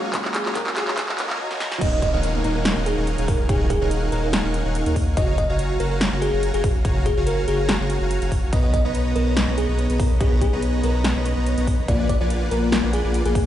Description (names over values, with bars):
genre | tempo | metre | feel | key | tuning
future bass | 143 BPM | 4/4 | swing 54% on 16ths, half-time | Eb minor | A4 = 438 Hz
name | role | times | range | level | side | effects
mellow electric guitar | accompaniment | 0.0-1.4 s | Gb3 to F4 | -38 LUFS | right 1 dB | sidechain pumping, tape echo
dense compressed supersaw | riff | 0.0-13.5 s | Bb3 to Bb5 | -25 LUFS | equal | sidechain pumping, tape echo
riser, swell and downlifter | sound effects | 0.0-5.2 s | none | -33 LUFS | equal | none
big-room dance drum kit | drums | 0.1-13.4 s | crash cymbal, handclaps, hi-hat, snare drum | -25 LUFS | equal | none
electronic kick drum | drums | 0.1-13.4 s | none | -22 LUFS | equal | none
bell-like FM electric piano | melody | 0.3-13.4 s | Ab4 to Eb5 | -28 LUFS | equal | chorus, phaser, sidechain pumping, tape echo
saturated sub bass | bass | 1.8-13.5 s | Eb1 to Eb2 | -23 LUFS | equal | sidechain pumping
room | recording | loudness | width
digital ambience | played on a big sound system in a bare room, stone room reverb, high-pass filter, nothing above 10.5 kHz | -19 LUFS | side -12 dB against mid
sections
0.0-1.8 A section; 1.8-13.5 B section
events
build-up 0.0-1.8; drum fill 0.0-1.4, 1.5-1.8; filter sweep 0.0-1.8; swell 1.0-1.8; drop 1.8-13.5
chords
0.0 Gbmaj9; 1.8 Ebm11; 5.2 Gbmaj9; 8.5 Bmaj9; 11.9 Bb7b9b13